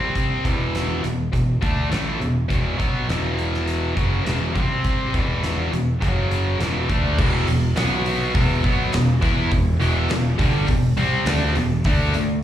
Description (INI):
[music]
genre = classic rock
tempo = 102 BPM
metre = 4/4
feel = straight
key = E minor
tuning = A4 = 440 Hz
[part]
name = tight distorted guitar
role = riff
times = 0.0-12.4 s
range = E2 to E4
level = -22 LUFS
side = equal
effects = distortion
[part]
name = picked electric bass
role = bass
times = 0.0-12.4 s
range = E1 to E2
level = -24 LUFS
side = equal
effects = none
[part]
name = huge arena drum kit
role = drums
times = 0.2-12.3 s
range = crash cymbal, hi-hat, kick drum, snare drum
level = -24 LUFS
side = equal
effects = none
[part]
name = tambourine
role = percussion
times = 7.5-12.3 s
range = none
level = -45 LUFS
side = left 3 dB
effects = none
[sound]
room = light reverb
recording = live gig heard through the venue's PA, club reverb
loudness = -18 LUFS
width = side -11 dB against mid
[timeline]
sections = 0.0-7.2 A section; 7.2-12.4 B section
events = none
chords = 0.4 E5; 4.5 C5; 5.1 E5; 6.0 F#5; 6.6 E5; 7.8 B5; 8.3 Em; 11.8 D5